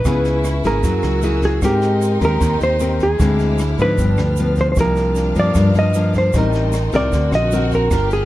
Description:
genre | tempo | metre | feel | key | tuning
bossa nova | 153 BPM | 4/4 | straight | unclear | A4 = 440 Hz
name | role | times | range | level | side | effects
hollow-body jazz guitar | melody | 0.0-8.2 s | G4 to Eb5 | -20 LUFS | right 1 dB | none
nylon-string guitar | accompaniment | 0.0-8.2 s | G2 to Bb4 | -20 LUFS | left 2 dB | none
warm symphonic string section | sustained chords | 0.0-8.2 s | Bb4 to F6 | -34 LUFS | left 3 dB | none
egg shaker | percussion | 0.0-8.2 s | none | -39 LUFS | right 8 dB | none
warm studio violin section | second line | 0.1-8.2 s | D4 to G4 | -29 LUFS | left 1 dB | none
fingered electric bass | bass | 0.1-8.2 s | G1 to Ab2 | -19 LUFS | right 1 dB | none
jazz brush drum kit | drums | 0.1-8.2 s | kick drum, rim click, snare drum | -24 LUFS | equal | none
room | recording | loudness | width
light reverb | dark, warm production | -14 LUFS | side -15 dB against mid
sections
0.0-8.2 A section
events
none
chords
0.1 Dbm7; 0.8 Gb9; 1.6 Abmaj9; 3.2 Dm7b5; 4.0 G7; 4.8 Cm11; 6.3 Am7b5; 7.1 Daug7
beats
| 0.05 0.45 0.84 1.23 | 1.62 2.02 2.41 2.80 | 3.20 3.59 3.98 4.38 | 4.77 5.16 5.55 5.95 | 6.34 6.73 7.12 7.52 | 7.91

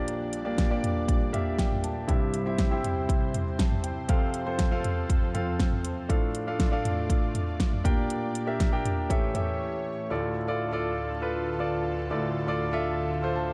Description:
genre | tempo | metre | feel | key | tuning
piano-driven pop | 120 BPM | 4/4 | straight | D minor from 10.1 s | A4 = 441 Hz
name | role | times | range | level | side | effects
warm concert grand piano | accompaniment | 0.0-13.5 s | Bb1 to A5 | -31 LUFS | equal | none
lush unison pad | sustained chords | 0.0-13.5 s | D2 to D5 | -39 LUFS | equal | chorus
pop drum kit | drums | 0.1-9.5 s | hi-hat, kick drum, snare drum, toms | -29 LUFS | equal | none
room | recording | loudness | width
light reverb | dark, warm production | -28 LUFS | mono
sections
0.0-10.1 A section; 10.1-13.5 B section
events
grand piano fill 1.1-2.1, 13.1-13.5; break 9.6-10.1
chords
0.0 Gm/Bb; 2.1 C; 4.1 F; 6.1 Dm/A; 7.8 Gm/Bb; 9.1 A7; 10.1 Dm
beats
| 0.08 0.58 1.08 1.58 | 2.09 2.59 3.09 3.59 | 4.09 4.59 5.09 5.60 | 6.10 6.60 7.10 7.60 | 8.10 8.60 9.10 9.60 | 10.10 10.60 11.10 11.60 | 12.10 12.60 13.10

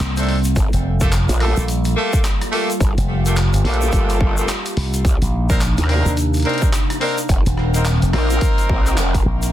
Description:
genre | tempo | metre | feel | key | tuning
glitch hop | 107 BPM | 4/4 | swing 60% on 16ths | G minor | A4 = 442 Hz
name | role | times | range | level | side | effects
warbly tape-like pad | sustained chords | 0.0-9.5 s | C3 to Bb4 | -26 LUFS | equal | chorus, built-in reverb, sidechain pumping
slap bass with an envelope filter | bass | 0.0-9.5 s | Eb1 to Eb2 | -18 LUFS | equal | none
boom bap sampler-style drum kit | drums | 0.0-9.5 s | handclaps, hi-hat, rim click | -27 LUFS | equal | none
brilliant horn section | stabs | 0.2-9.0 s | A3 to Bb4 | -23 LUFS | equal | sidechain pumping, tape echo
tube shaker | percussion | 0.2-9.5 s | none | -31 LUFS | left 3 dB | none
growl bass | bass | 0.6-9.2 s | F1 to Eb2 | -19 LUFS | equal | chorus
electronic kick drum | drums | 0.6-9.2 s | none | -18 LUFS | equal | overdrive
room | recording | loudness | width
light reverb | dense, heavily limited modern master | -15 LUFS | side -12 dB against mid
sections
0.0-9.5 A section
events
drop 0.0-9.5; band accent 9.0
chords
0.0 Cm9; 0.6 Gm9; 5.0 Cm9; 7.3 F7sus4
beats
0.00 | 0.56 1.12 1.68 2.25 | 2.81 3.37 3.93 4.49 | 5.05 5.61 6.17 6.73 | 7.29 7.85 8.41 8.97

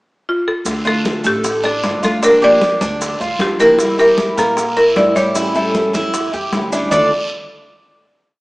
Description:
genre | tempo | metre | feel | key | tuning
latin, Cuban son and guajira | 153 BPM | 4/4 | straight | D harmonic minor | A4 = 439 Hz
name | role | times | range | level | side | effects
buzzing marimba with hard mallets | melody | 0.3-7.1 s | F4 to D5 | -14 LUFS | equal | none
picked steel-string acoustic guitar | accompaniment | 0.7-7.1 s | D3 to G4 | -21 LUFS | equal | none
upright bass | bass | 0.7-7.1 s | G1 to Bb2 | -30 LUFS | equal | none
bongos | percussion | 0.7-7.0 s | none | -27 LUFS | left 1 dB | none
congas | percussion | 0.7-7.0 s | none | -25 LUFS | equal | none
guiro | percussion | 0.7-7.0 s | none | -29 LUFS | right 1 dB | none
maracas | percussion | 0.7-7.0 s | none | -31 LUFS | right 2 dB | none
Cuban tres | arpeggios | 0.8-7.1 s | Bb3 to D5 | -19 LUFS | right 1 dB | none
room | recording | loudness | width
wet stone room reverb, RT60 1.4 s | band playing live in one room, small speaker sound | -13 LUFS | side -22 dB against mid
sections
0.0-0.7 pickup bar; 0.7-6.9 verse; 6.9-8.4 final chord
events
none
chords
0.0 N.C.; 0.7 Dm; 2.2 Gm7; 3.8 Edim; 5.4 A7; 6.9 D5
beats
0.27 | 0.66 1.05 1.44 1.83 | 2.23 2.62 3.01 3.40 | 3.79 4.18 4.57 4.96 | 5.35 5.75 6.14 6.53 | 6.92

